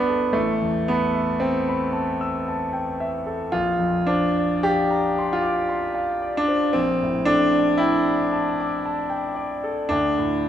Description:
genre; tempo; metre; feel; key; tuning
classical, impressionist solo piano; 57 BPM; 3/4; rubato; unclear; A4 = 441 Hz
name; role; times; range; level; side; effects
clear concert grand piano; solo; 0.0-10.5 s; G1 to E6; -20 LUFS; equal; none
room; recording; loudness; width
moderate concert hall reverb, RT60 2.1 s; minimal, uncompressed stereo recording; -20 LUFS; side -10 dB against mid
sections
0.0-10.5 A section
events
none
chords
0.3 Am9; 3.5 Bbadd9; 6.7 A9sus4/Bb; 9.9 D5

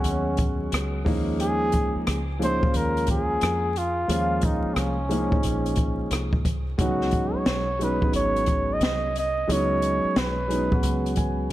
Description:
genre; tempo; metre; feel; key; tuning
hip hop, jazz-hop; 89 BPM; 4/4; swing 65% on 16ths; Db mixolydian; A4 = 441 Hz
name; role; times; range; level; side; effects
trumpet with bucket mute; melody; 0.0-11.2 s; C4 to Eb5; -27 LUFS; equal; analog delay
dark grand piano; accompaniment; 0.0-11.5 s; F3 to Ab5; -27 LUFS; equal; none
deep dub fingered electric bass; bass; 0.0-11.5 s; Ab1 to F2; -30 LUFS; equal; none
open jazz drum kit; drums; 0.0-11.5 s; hi-hat, kick drum, rim click, snare drum; -26 LUFS; equal; none
room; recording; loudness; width
light reverb, small room ambience; dark, warm production, vinyl crackle; -22 LUFS; side -14 dB against mid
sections
0.0-11.5 A section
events
grand piano fill 10.8-11.5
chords
0.0 Db9sus4; 1.1 Eb9sus4; 6.8 Db9sus4

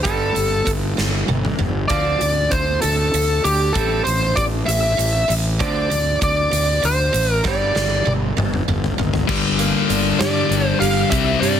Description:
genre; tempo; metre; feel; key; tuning
quiet-loud alternative rock; 65 BPM (dotted quarters); 6/8; straight; unclear; A4 = 440 Hz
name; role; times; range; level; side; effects
smooth overdriven lead guitar; melody; 0.0-11.6 s; G4 to F5; -20 LUFS; equal; none
picked acoustic archtop guitar; arpeggios; 0.0-11.6 s; G2 to G4; -27 LUFS; right 12 dB; none
fuzz fingered electric bass; bass; 0.1-11.6 s; G1 to G2; -22 LUFS; equal; overdrive
huge arena drum kit; drums; 0.1-11.6 s; crash cymbal, hi-hat, kick drum, snare drum, toms; -23 LUFS; equal; none
sludgy distorted guitar; riff; 9.3-11.6 s; G2 to C4; -19 LUFS; left 11 dB; overdrive
room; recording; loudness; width
studio reverb; heavily compressed radio sound, multiband compression; -16 LUFS; side -9 dB against mid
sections
0.0-9.3 A section; 9.3-11.6 B section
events
drum fill 1.0-1.9, 7.4-9.3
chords
0.0 Gsus2; 1.9 Dm7; 3.8 Am7; 5.6 Dm7; 7.4 G5; 9.3 Gm

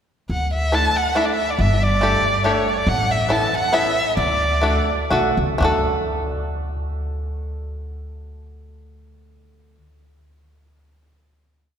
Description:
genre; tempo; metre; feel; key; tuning
musette waltz; 120-141 BPM; 3/4; swing 54% on 8ths; D major; A4 = 440 Hz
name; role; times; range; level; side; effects
rich violin; melody; 0.3-5.1 s; C#5 to A5; -21 LUFS; equal; none
upright bass; bass; 0.3-9.8 s; G1 to D2; -23 LUFS; equal; none
bluegrass banjo; accompaniment; 0.7-9.8 s; A3 to A4; -22 LUFS; equal; none
room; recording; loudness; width
wet church reverb, RT60 3.4 s; recorded in a church or concert hall; -17 LUFS; side -8 dB against mid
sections
0.3-5.6 A section; 5.6-8.6 final chord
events
slowing down 2.9-5.6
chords
0.3 Dsus2; 1.6 Gsus2; 2.9 Aadd9; 4.2 D

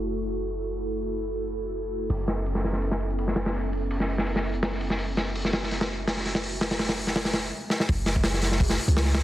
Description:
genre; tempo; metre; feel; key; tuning
drum and bass, jungle; 166 BPM; 4/4; straight; unclear; A4 = 440 Hz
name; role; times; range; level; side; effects
airy breathy pad; sustained chords; 0.0-9.2 s; A3 to A4; -33 LUFS; right 1 dB; chorus, vintage 12-bit sampler grit
long sustained 808-style bass; bass; 0.0-9.2 s; F#1 to C#2; -29 LUFS; equal; none
crunchy breakbeat drum kit; drums; 2.1-9.2 s; hi-hat, kick drum, snare drum; -26 LUFS; equal; none
room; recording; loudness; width
light reverb, small room ambience; dense, heavily limited modern master, vinyl crackle, low-pass filter; -24 LUFS; side -14 dB against mid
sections
0.0-7.9 A section; 7.9-9.2 B section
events
filter sweep on analog synth pad 0.0-7.9; filter sweep 0.0-7.9; drum fill 7.7; drop 7.9-9.2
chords
0.0 F#m7; 2.1 Aadd9/F#; 7.9 F#m9

